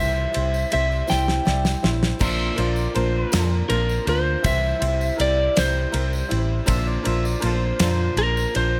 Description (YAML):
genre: folk rock and heartland rock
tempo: 54 BPM (dotted quarters)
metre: 6/8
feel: straight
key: C mixolydian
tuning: A4 = 440 Hz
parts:
  - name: lightly driven lead guitar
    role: melody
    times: 0.0-8.8 s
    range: Bb4 to G5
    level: -26 LUFS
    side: equal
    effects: analog delay
  - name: bright upright piano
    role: accompaniment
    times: 0.0-8.8 s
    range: D4 to D5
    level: -35 LUFS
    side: equal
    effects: none
  - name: picked steel-string acoustic guitar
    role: accompaniment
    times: 0.0-8.8 s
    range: Bb2 to C5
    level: -31 LUFS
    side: equal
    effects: none
  - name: vintage muted fingered electric bass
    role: bass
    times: 0.0-8.8 s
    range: A1 to F2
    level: -26 LUFS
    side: equal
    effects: none
  - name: damped 70s drum kit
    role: drums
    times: 0.3-8.7 s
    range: crash cymbal, kick drum, ride cymbal, snare drum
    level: -29 LUFS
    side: equal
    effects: none
  - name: tambourine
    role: percussion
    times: 0.5-8.6 s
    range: none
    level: -43 LUFS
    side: equal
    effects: none
  - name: overdriven harmonica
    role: second line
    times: 2.2-8.2 s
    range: F4 to E5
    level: -33 LUFS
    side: equal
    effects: none
room: light reverb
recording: none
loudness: -22 LUFS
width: mono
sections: 0.0-8.8 A section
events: drum fill 1.1-2.2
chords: 0.0 C; 2.2 Bbadd9; 4.4 C; 6.7 Bbadd9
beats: 1.10 | 2.21 3.33 | 4.45 5.57 | 6.69 7.81